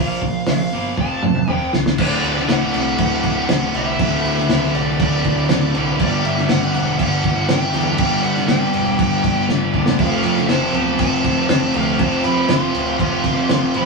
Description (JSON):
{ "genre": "classic rock", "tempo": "120 BPM", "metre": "4/4", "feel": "straight", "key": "unclear", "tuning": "A4 = 440 Hz", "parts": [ { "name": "fuzz lead guitar", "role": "melody", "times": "0.0-13.9 s", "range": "D5 to C6", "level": "-25 LUFS", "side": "left 1 dB", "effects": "wah, distortion" }, { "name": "overdriven electric guitar", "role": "riff", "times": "0.0-13.9 s", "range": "D2 to Bb3", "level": "-24 LUFS", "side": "equal", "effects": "none" }, { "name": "fuzz picked electric bass", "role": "bass", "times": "0.0-13.9 s", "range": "D1 to G2", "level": "-26 LUFS", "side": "right 1 dB", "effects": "overdrive" }, { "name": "cloth-damped thuddy drum kit", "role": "drums", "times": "0.2-13.9 s", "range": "crash cymbal, hi-hat, kick drum, snare drum, toms", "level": "-19 LUFS", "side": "equal", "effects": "none" }, { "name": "thick fuzz guitar", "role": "riff", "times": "2.0-13.9 s", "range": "D2 to G3", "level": "-21 LUFS", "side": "right 1 dB", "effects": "distortion" }, { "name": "octave-fuzz lead guitar", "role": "second line", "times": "10.0-13.9 s", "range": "A3 to F4", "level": "-27 LUFS", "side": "right 1 dB", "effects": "distortion" } ], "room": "moderate studio reverb, RT60 0.8 s", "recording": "band playing live in one room", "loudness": "-15 LUFS", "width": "side -2 dB against mid", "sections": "0.0-2.0 A section; 2.0-13.9 B section", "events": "drum fill 1.0-2.0, 9.5-10.0", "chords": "0.0 Bb5; 1.0 F; 2.0 D; 6.0 G5; 10.0 F", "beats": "0.47 0.97 1.48 | 1.98 2.48 2.98 3.49 | 3.99 4.49 4.99 5.49 | 5.99 6.49 7.00 7.50 | 8.00 8.50 9.00 9.50 | 10.00 10.50 10.99 11.49 | 11.99 12.49 12.99 13.49" }